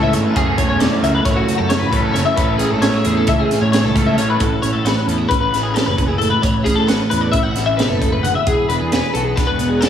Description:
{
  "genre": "math rock and midwest emo",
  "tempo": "266 BPM (eighths)",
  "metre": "9/8",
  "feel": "straight",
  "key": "A major",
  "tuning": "A4 = 439 Hz",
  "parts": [
    { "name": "clean electric guitar", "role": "accompaniment", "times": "0.0-9.9 s", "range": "F#2 to G#4", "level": "-22 LUFS", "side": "right 4 dB", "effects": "none" },
    { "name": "twelve-string electric guitar", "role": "arpeggios", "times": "0.0-9.9 s", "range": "F#4 to F#5", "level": "-19 LUFS", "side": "left 4 dB", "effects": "ensemble chorus, slapback echo" },
    { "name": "raw garage guitar", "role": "riff", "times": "0.0-4.4 s", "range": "E3 to A4", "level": "-21 LUFS", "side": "right 1 dB", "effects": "overdrive, spring reverb, slapback echo" },
    { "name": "fuzz fingered electric bass", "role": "bass", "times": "0.0-9.8 s", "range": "E1 to A2", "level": "-21 LUFS", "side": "equal", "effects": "overdrive" },
    { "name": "crisp fusion drum kit", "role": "drums", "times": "0.1-9.9 s", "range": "hi-hat, kick drum, snare drum", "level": "-20 LUFS", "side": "equal", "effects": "none" }
  ],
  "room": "wet lush hall reverb, RT60 1.6 s, small room reverb",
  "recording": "big arena sound",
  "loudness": "-14 LUFS",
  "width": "side -9 dB against mid",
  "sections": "0.0-4.4 A section; 4.4-9.9 B section",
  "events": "none",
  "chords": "0.4 F#m7; 2.4 Amaj9; 4.4 A69; 8.5 E9",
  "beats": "0.13 | 0.35 0.58 0.80 1.03 1.25 1.48 1.70 1.93 2.15 | 2.37 2.60 2.82 3.05 3.27 3.50 3.72 3.95 4.17 | 4.40 4.62 4.85 5.07 5.30 5.53 5.75 5.98 6.20 | 6.43 6.66 6.88 7.11 7.33 7.56 7.79 8.02 8.24 | 8.47 8.70 8.92 9.15 9.38 9.61 9.83"
}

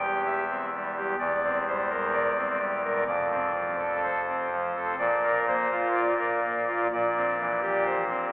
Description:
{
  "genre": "classical, chorale-style piece for pipe organ",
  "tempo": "63 BPM",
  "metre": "4/4",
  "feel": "straight",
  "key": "unclear",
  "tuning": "A4 = 440 Hz",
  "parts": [
    { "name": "pipe organ, soft reed", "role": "solo", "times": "0.0-8.3 s", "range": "E1 to G5", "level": "-24 LUFS", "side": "equal", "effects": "none" }
  ],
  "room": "wet church reverb, RT60 3.3 s",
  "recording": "heard from further back in the room, telephone sound",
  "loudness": "-24 LUFS",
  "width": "side -20 dB against mid",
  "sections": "0.0-8.3 A section",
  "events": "none",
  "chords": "0.0 C/E; 1.2 C7/E; 3.1 F; 5.0 Bb; 6.9 C7/Bb",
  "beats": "0.24 | 1.18 2.13 3.07 4.02 | 4.98 5.94 6.90 7.85"
}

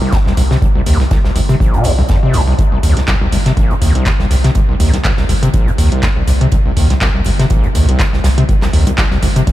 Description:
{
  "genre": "acid house",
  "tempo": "122 BPM",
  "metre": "4/4",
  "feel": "swing 55% on 16ths",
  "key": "unclear",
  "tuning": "A4 = 437 Hz",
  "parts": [
    { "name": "overdriven acid bass", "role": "riff", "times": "0.0-9.5 s", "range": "Bb1 to C3", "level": "-14 LUFS", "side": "equal", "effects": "lush chorus, sidechain pumping, ping-pong delay" },
    { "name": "warm sub bass", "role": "bass", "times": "0.0-9.4 s", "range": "G1 to C2", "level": "-15 LUFS", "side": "equal", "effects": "sidechain pumping" },
    { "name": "electronic kick drum", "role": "drums", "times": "0.1-9.5 s", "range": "none", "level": "-15 LUFS", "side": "equal", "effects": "none" },
    { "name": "modern studio drum kit", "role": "drums", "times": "0.1-9.5 s", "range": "hi-hat, snare drum", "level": "-31 LUFS", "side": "right 2 dB", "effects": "sidechain pumping on hats, high-pass filter on hats, high-pass filter on snare, high-pass filter on room" },
    { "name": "electro analog drum machine", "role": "drums", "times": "0.4-9.5 s", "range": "handclaps, hi-hat", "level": "-22 LUFS", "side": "equal", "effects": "none" }
  ],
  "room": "light reverb, small room ambience",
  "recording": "none",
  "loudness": "-10 LUFS",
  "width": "side -14 dB against mid",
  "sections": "0.0-9.5 A section",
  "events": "none",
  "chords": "none",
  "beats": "0.13 | 0.62 1.11 1.60 2.10 | 2.59 3.08 3.57 4.06 | 4.55 5.05 5.54 6.03 | 6.52 7.01 7.50 8.00 | 8.49 8.98 9.47"
}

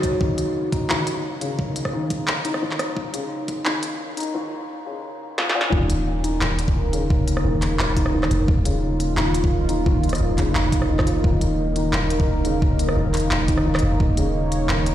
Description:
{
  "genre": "half-time drum and bass",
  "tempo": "174 BPM",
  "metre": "4/4",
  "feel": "swing 54% on 16ths, half-time",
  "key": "unclear",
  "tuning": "A4 = 440 Hz",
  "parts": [
    { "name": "dark analog pad", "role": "sustained chords", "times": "0.0-14.9 s", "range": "Bb3 to Eb5", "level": "-27 LUFS", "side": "right 2 dB", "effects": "chorus, vintage 12-bit sampler grit, sidechain pumping" },
    { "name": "felt-muted upright piano", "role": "arpeggios", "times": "0.0-14.9 s", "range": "Eb2 to Eb4", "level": "-25 LUFS", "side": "left 2 dB", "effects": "tape echo" },
    { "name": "electronic kick drum", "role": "drums", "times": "0.0-3.6, 5.7-14.1 s", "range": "none", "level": "-22 LUFS", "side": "equal", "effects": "small room reverb" },
    { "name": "industrial drum kit", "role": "drums", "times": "0.0-14.9 s", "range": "handclaps, hi-hat, rim click, snare drum", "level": "-27 LUFS", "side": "equal", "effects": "small room reverb" },
    { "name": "long sustained 808-style bass", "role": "bass", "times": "5.7-14.9 s", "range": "Eb1 to F1", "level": "-23 LUFS", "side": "equal", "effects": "tube saturation" }
  ],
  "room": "light reverb",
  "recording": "played on a big sound system in a bare room, large studio reverb, high-pass filter",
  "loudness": "-19 LUFS",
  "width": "side -12 dB against mid",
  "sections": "0.0-5.7 A section; 5.7-14.9 B section",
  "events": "build-up 0.0-5.7; filter sweep on felt piano 0.0-5.7; filter sweep 0.0-5.7; drum fill 5.4-5.7; drop 5.7-14.9",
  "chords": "0.0 Eb5",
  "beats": "| 0.21 0.55 0.90 1.24 | 1.59 1.93 2.28 2.62 | 2.97 3.31 3.66 4.00 | 4.34 4.69 5.04 5.38 | 5.72 6.07 6.41 6.76 | 7.10 7.45 7.79 8.14 | 8.48 8.83 9.17 9.52 | 9.86 10.21 10.55 10.90 | 11.24 11.59 11.93 12.28 | 12.62 12.97 13.31 13.66 | 14.00 14.35 14.69"
}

